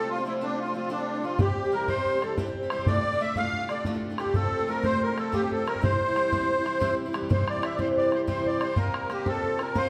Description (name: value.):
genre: celtic folk, Celtic slip jig.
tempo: 122 BPM (dotted quarters).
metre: 9/8.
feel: straight.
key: C mixolydian.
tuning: A4 = 444 Hz.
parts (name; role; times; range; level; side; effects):
musette accordion; melody; 0.0-9.9 s; D4 to F5; -30 LUFS; equal; none.
picked twelve-string acoustic guitar; accompaniment; 0.0-9.9 s; D2 to Bb4; -32 LUFS; equal; none.
hand-pumped harmonium; drone; 0.0-9.9 s; C3 to G3; -42 LUFS; equal; none.
bodhran; percussion; 1.4-9.8 s; none; -32 LUFS; equal; none.
room: wet stone room reverb, RT60 1.3 s.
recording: band playing live in one room.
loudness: -27 LUFS.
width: mono.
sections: 0.0-7.3 A section; 7.3-9.9 B section.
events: none.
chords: 0.0 F; 1.4 C; 2.9 Dm; 4.3 F; 5.8 C; 8.8 Bbsus2.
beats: 0.40 0.90 | 1.39 1.88 2.37 | 2.87 3.36 3.85 | 4.34 4.84 5.33 | 5.82 6.32 6.81 | 7.30 7.79 8.28 | 8.77 9.27 9.76.